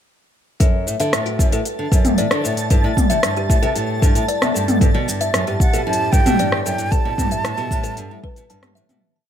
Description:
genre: folktronica.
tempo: 114 BPM.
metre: 4/4.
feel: straight.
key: unclear.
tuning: A4 = 439 Hz.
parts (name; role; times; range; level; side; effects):
kalimba; second line; 0.6-8.8 s; F#4 to A5; -26 LUFS; left 2 dB; digital delay.
fingerpicked steel-string acoustic guitar; arpeggios; 0.6-9.0 s; F#2 to D3; -23 LUFS; left 1 dB; ping-pong delay.
electronic kick drum; drums; 0.6-8.3 s; none; -16 LUFS; equal; none.
organic electronic drum kit; drums; 0.6-9.0 s; hi-hat, rim click, shaker, toms; -21 LUFS; equal; none.
twinkling granular texture; texture; 1.1-9.0 s; A5; -29 LUFS; right 3 dB; built-in reverb.
warbly tape-like pad; sustained chords; 5.2-9.0 s; A2 to A4; -29 LUFS; equal; chorus, built-in reverb.
breathy concert flute; melody; 5.6-8.5 s; F#5 to A5; -23 LUFS; right 3 dB; none.
room: little or no reverb.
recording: none.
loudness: -16 LUFS.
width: side -9 dB against mid.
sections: 0.6-9.0 groove.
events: fade-out 6.2-9.0.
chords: 0.6 D; 2.7 Am7; 4.8 Emadd9; 6.9 Gadd9.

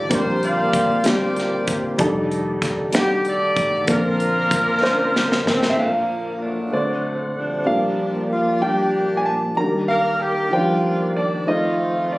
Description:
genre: slow gospel.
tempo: 63 BPM (dotted quarters).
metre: 6/8.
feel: straight.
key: Bb major.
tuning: A4 = 435 Hz.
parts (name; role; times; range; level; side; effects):
edgy saxophone section; melody; 0.0-12.2 s; D3 to F5; -22 LUFS; equal; slapback echo.
dark upright piano; accompaniment; 0.0-12.2 s; Bb2 to C5; -22 LUFS; left 1 dB; none.
tonewheel organ; sustained chords; 0.0-12.2 s; Bb2 to F#5; -29 LUFS; right 1 dB; slow rotary speaker, chorus vibrato.
vintage muted fingered electric bass; bass; 0.0-5.7 s; E1 to Bb1; -30 LUFS; equal; none.
modern studio drum kit; drums; 0.1-5.8 s; hi-hat, kick drum, snare drum; -23 LUFS; equal; none.
clear concert grand piano; melody; 5.7-12.2 s; D5 to Bb5; -24 LUFS; right 1 dB; none.
room: light reverb, studio ambience.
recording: recorded on a phone in the room, club reverb, compression.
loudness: -18 LUFS.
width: side -20 dB against mid.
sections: 0.0-5.8 A section; 5.8-12.2 B section.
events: drum fill 4.8-5.8.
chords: 0.1 Bb69; 2.0 F13; 3.9 Bbmaj9; 5.8 Bbmaj7; 6.7 D7; 7.7 Gm7/Bb; 9.6 Ebmaj7; 11.5 F7.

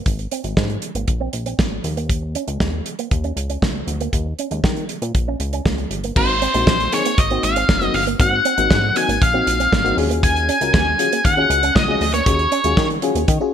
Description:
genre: early-eighties boogie funk.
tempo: 118 BPM.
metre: 4/4.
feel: straight.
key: unclear.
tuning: A4 = 440 Hz.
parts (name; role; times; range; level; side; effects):
chorused synth bass; bass; 0.1-13.4 s; Gb1 to Eb3; -23 LUFS; equal; none.
damped 70s drum kit; drums; 0.1-13.4 s; crash cymbal, hi-hat, kick drum, snare drum; -20 LUFS; equal; gated reverb.
electric guitar with an envelope filter; riff; 0.2-13.5 s; Ab3 to Db4; -27 LUFS; right 8 dB; analog chorus.
octave-fuzz lead guitar; melody; 6.2-12.9 s; C5 to Ab5; -18 LUFS; left 1 dB; distortion.
FM electric piano; accompaniment; 6.2-13.5 s; Bb3 to Bb4; -23 LUFS; left 3 dB; chorus.
room: moderate plate reverb, RT60 1.1 s, studio reverb.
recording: bright 1980s-style digital production.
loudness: -16 LUFS.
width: side -8 dB against mid.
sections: 0.0-6.2 A section; 6.2-13.5 B section.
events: none.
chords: 0.0 Abadd9; 1.8 Eb7(no3); 6.2 Ab9; 10.0 Ebm11.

